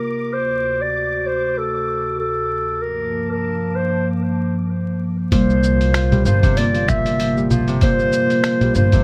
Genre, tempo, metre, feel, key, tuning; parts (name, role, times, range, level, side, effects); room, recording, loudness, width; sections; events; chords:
folktronica; 96 BPM; 4/4; swing 56% on 16ths; A4 = 440 Hz
dark clarinet; melody; 0.0-9.0 s; A4 to E5; -24 LUFS; equal; delay
warbly tape-like pad; sustained chords; 0.0-9.0 s; D2 to A5; -26 LUFS; equal; chorus, built-in reverb
flickering grainy texture; texture; 0.0-4.1 s; D6; -42 LUFS; equal; built-in reverb
Celtic harp; arpeggios; 5.3-9.0 s; Bb2 to G3; -24 LUFS; equal; delay
upright bass; bass; 5.3-9.0 s; G1 to C2; -21 LUFS; equal
electronic kick drum; drums; 5.3-9.0 s; -19 LUFS; equal
lo-fi sampler-style drum kit; drums; 5.3-9.0 s; congas, finger snaps, hi-hat, shaker; -25 LUFS; equal
moderate studio reverb, RT60 0.5 s; vinyl crackle; -19 LUFS; mono
0.0-5.3 A section; 5.3-9.0 B section
0.3 D7; 2.8 Gm9; 5.3 C7sus4